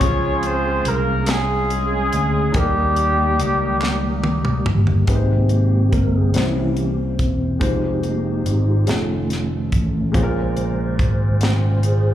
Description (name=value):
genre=slow gospel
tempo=47 BPM (dotted quarters)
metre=6/8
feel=straight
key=Ab major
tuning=A4 = 437 Hz
part: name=mellow horn section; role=melody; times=0.0-4.7 s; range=G3 to Db5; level=-20 LUFS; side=equal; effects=slapback echo
part: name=dark baby grand piano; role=accompaniment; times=0.0-12.1 s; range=Bb2 to C5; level=-26 LUFS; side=left 4 dB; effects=slapback echo
part: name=mellow tonewheel organ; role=sustained chords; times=0.0-12.1 s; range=Db3 to C5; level=-24 LUFS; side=right 2 dB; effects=fast rotary speaker, chorus vibrato
part: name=fingered electric bass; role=bass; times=0.0-12.1 s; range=E1 to Eb2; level=-20 LUFS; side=equal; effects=none
part: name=tight funk drum kit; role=drums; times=0.0-12.0 s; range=hi-hat, kick drum, snare drum, toms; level=-22 LUFS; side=equal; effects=none
part: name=group handclap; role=percussion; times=1.3-4.2 s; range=none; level=-33 LUFS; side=left 1 dB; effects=none
room=light reverb, small room ambience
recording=live gig heard through the venue's PA, club reverb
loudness=-16 LUFS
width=side -11 dB against mid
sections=0.0-5.1 A section; 5.1-12.1 B section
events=drum fill 3.8-5.1; tonewheel organ solo 5.1-12.1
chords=0.0 Db; 2.5 Eb; 5.1 Abmaj7; 6.4 C7b9; 7.6 Fm7; 8.9 F7b13; 10.2 Bbm7